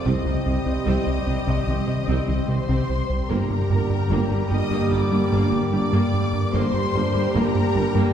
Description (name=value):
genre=cinematic, hybrid orchestral and electronic film score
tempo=74 BPM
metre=4/4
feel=straight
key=G minor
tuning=A4 = 440 Hz
part: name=clear symphonic violin section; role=melody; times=0.0-8.1 s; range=Bb5 to Eb6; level=-33 LUFS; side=left 3 dB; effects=none
part: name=clear symphonic violin section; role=second line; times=0.0-8.1 s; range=Bb4 to Eb5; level=-31 LUFS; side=left 3 dB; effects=none
part: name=clear symphonic viola section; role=accompaniment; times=0.0-8.1 s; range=Bb3 to G4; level=-29 LUFS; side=right 1 dB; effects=none
part: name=bright trombone section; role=sustained chords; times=0.0-8.1 s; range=C3 to G3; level=-34 LUFS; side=right 2 dB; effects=none
part: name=chorused pulse-width pad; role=sustained chords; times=0.0-8.1 s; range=D3 to C5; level=-31 LUFS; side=equal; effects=none
part: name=mellow French horn section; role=sustained chords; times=0.0-8.1 s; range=Bb3 to G4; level=-31 LUFS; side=equal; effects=none
part: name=thumb-piano-like synth pluck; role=arpeggios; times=0.1-8.1 s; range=C3 to G4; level=-32 LUFS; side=left 3 dB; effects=none
part: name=rubbery square bass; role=riff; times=0.1-8.1 s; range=C2 to G3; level=-24 LUFS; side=right 1 dB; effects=none
part: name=dark tuba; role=bass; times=0.1-7.8 s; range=G1 to C2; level=-30 LUFS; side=right 2 dB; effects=none
part: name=rich symphonic cello section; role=bass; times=0.1-8.0 s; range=G2 to C3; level=-30 LUFS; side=equal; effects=none
part: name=rich symphonic double bass section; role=bass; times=0.1-7.8 s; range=G1 to C2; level=-31 LUFS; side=right 2 dB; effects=none
room=wet concert hall reverb, RT60 2.3 s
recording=heard from further back in the room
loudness=-19 LUFS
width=side -9 dB against mid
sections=0.0-8.1 A section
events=none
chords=0.1 Cm; 3.3 Gm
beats=| 0.06 0.87 1.68 2.49 | 3.30 4.11 4.92 5.73 | 6.54 7.36